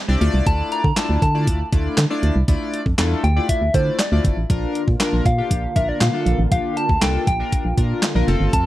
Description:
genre	dance-pop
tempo	119 BPM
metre	4/4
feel	straight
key	unclear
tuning	A4 = 443 Hz
part	chorused polysynth	accompaniment	0.1-8.7 s	A3 to D5	-25 LUFS	left 3 dB	sidechain pumping
part	organ-like FM bass	bass	0.1-8.7 s	F1 to D3	-19 LUFS	equal	sidechain pumping
part	gated 80s digital drum machine	drums	0.2-8.6 s	handclaps, hi-hat, kick drum, snare drum	-21 LUFS	equal	gated reverb, gated reverb snare
part	soft struck synth lead	melody	0.5-8.7 s	C5 to Bb5	-24 LUFS	equal	chorus
part	filtered supersaw swell	sustained chords	4.5-8.7 s	C3 to F4	-28 LUFS	equal	sidechain pumping
room	little or no reverb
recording	dry, close 1970s-style studio recording, faint mains hum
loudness	-17 LUFS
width	side -15 dB against mid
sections	0.0-8.7 A section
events	none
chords	0.2 Dmadd9; 4.5 Bb

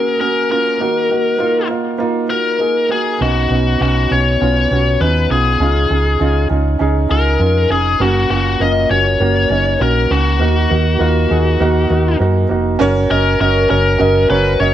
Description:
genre	piano-driven pop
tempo	100 BPM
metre	4/4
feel	straight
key	F# major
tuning	A4 = 444 Hz
part	biting lead guitar	melody	0.0-14.7 s	F#4 to D#5	-16 LUFS	left 4 dB	overdrive
part	warm concert grand piano	accompaniment	0.0-14.7 s	B2 to D#5	-17 LUFS	right 4 dB	none
part	hollow-body short-scale fingered electric bass	bass	3.2-14.7 s	E#1 to F#2	-16 LUFS	equal	none
room	moderate large studio reverb, RT60 1.3 s, small room ambience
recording	none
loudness	-12 LUFS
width	side -11 dB against mid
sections	0.0-12.8 A section; 12.8-14.7 B section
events	none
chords	0.0 F#; 0.8 D#m; 3.2 Badd9; 5.6 C#add9; 8.0 F#; 10.4 D#m; 12.8 F#

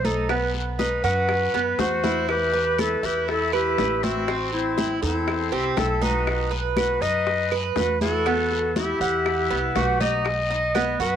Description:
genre	latin, Cuban son and guajira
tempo	120 BPM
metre	4/4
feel	straight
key	E minor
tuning	A4 = 437 Hz
part	breathy clarinet	melody	0.0-11.2 s	E4 to D#5	-25 LUFS	left 1 dB	none
part	Cuban tres	arpeggios	0.0-11.2 s	B3 to F#5	-26 LUFS	right 8 dB	none
part	upright bass	bass	0.0-11.2 s	A1 to F#2	-29 LUFS	equal	none
part	bongos	percussion	0.0-11.2 s	none	-32 LUFS	left 10 dB	none
part	congas	percussion	0.0-11.2 s	none	-32 LUFS	left 2 dB	none
part	guiro	percussion	0.0-11.2 s	none	-37 LUFS	left 12 dB	none
part	claves	percussion	0.3-11.0 s	none	-36 LUFS	right 10 dB	none
part	bright silver concert flute	second line	1.8-10.3 s	C4 to B4	-29 LUFS	left 10 dB	none
room	moderate plate reverb, RT60 2.7 s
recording	1960s-style stereo with parts hard left and right, vinyl crackle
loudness	-20 LUFS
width	side -9 dB against mid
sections	0.0-10.3 A section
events	drum fill 2.0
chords	0.3 B; 2.3 Em; 4.3 Am; 6.3 B; 8.3 Emadd9; 10.3 B

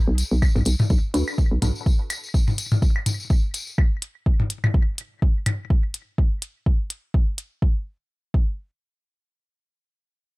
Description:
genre	minimal techno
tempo	125 BPM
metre	4/4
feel	swing 56% on 16ths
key	B minor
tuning	A4 = 440 Hz
part	hollow knocking FM bass	bass	0.1-1.7 s	B1 to D2	-21 LUFS	equal	sidechain pumping
part	electronic hi-hat	drums	0.2-7.5 s	none	-30 LUFS	left 1 dB	none
part	tambourine	percussion	0.2-3.8 s	none	-34 LUFS	left 3 dB	none
part	electronic kick drum	drums	0.4-8.5 s	none	-19 LUFS	equal	none
part	electronic claves and toms	percussion	0.4-5.6 s	none	-24 LUFS	left 1 dB	overdrive
part	filtered dub chord stab	stabs	1.1-1.7 s	D4 to B4	-30 LUFS	left 1 dB	phaser, wide subtle chorus, ping-pong delay
room	digital ambience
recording	none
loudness	-20 LUFS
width	side -23 dB against mid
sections	0.0-7.6 A section; 7.6-10.4 B section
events	none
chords	0.0 Bm; 7.6 N.C.

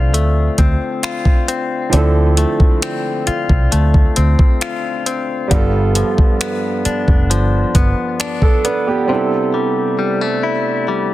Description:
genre	contemporary R&B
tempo	67 BPM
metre	4/4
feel	straight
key	D dorian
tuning	A4 = 436 Hz
part	warm grand piano	accompaniment	0.0-11.1 s	F3 to B4	-20 LUFS	right 4 dB	none
part	direct-recorded clean electric guitar	arpeggios	0.0-11.1 s	G2 to F4	-20 LUFS	left 5 dB	digital delay
part	vintage muted fingered electric bass	bass	0.0-7.9 s	F1 to D2	-15 LUFS	equal	none
part	smooth R&B drum kit	drums	0.1-8.9 s	finger snaps, hi-hat, kick drum	-14 LUFS	equal	soft clipping on snare
room	little or no reverb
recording	dense, heavily limited modern master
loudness	-13 LUFS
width	side -15 dB against mid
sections	0.0-11.1 A section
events	break 9.1-11.1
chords	0.0 Dm7; 5.5 G7; 9.1 C6

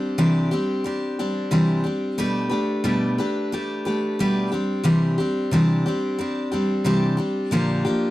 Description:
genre	rock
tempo	90 BPM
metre	4/4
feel	straight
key	unclear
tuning	A4 = 437 Hz
part	picked steel-string acoustic guitar	solo	0.0-8.1 s	Bb2 to B4	-20 LUFS	equal	none
room	light reverb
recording	dry, close 1970s-style studio recording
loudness	-20 LUFS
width	side -16 dB against mid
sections	0.0-8.1 A section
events	none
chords	0.0 Cadd9; 2.2 Gadd9/B; 4.5 Cadd9; 7.5 Bb6

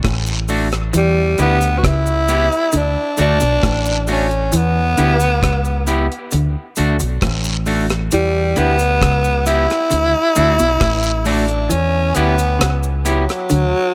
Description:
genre	roots reggae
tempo	67 BPM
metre	4/4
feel	straight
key	E dorian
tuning	A4 = 438 Hz
part	semi-hollow electric guitar	riff	0.0-13.6 s	A2 to E3	-24 LUFS	equal	ensemble chorus
part	deep dub fingered electric bass	bass	0.0-13.7 s	A1 to E2	-21 LUFS	equal	none
part	deep reggae drum kit	drums	0.0-13.7 s	hi-hat, kick drum, rim click	-24 LUFS	equal	slapback echo
part	guiro and cabasa	percussion	0.0-13.7 s	none	-30 LUFS	equal	none
part	electric guitar at the edge of break-up	accompaniment	0.5-13.2 s	A3 to G4	-25 LUFS	equal	tape echo
part	growling tenor saxophone	melody	1.0-13.9 s	F#3 to F#4	-20 LUFS	equal	tape echo
room	light reverb, studio ambience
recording	none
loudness	-16 LUFS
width	mono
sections	0.0-13.9 A section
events	kick muted 11.7-13.9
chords	0.0 D; 0.9 Em; 2.7 D; 4.5 Em; 6.3 D; 8.1 Em; 9.9 D; 11.7 Em

